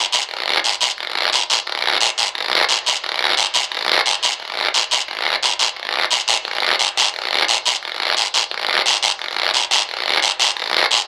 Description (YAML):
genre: latin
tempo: 175 BPM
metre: 4/4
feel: straight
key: none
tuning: none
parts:
  - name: guiro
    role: percussion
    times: 0.1-11.1 s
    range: none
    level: -17 LUFS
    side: equal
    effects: none
room: light reverb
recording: dark, warm production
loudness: -17 LUFS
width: mono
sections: 0.0-4.4 A section; 4.4-11.1 B section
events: none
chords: none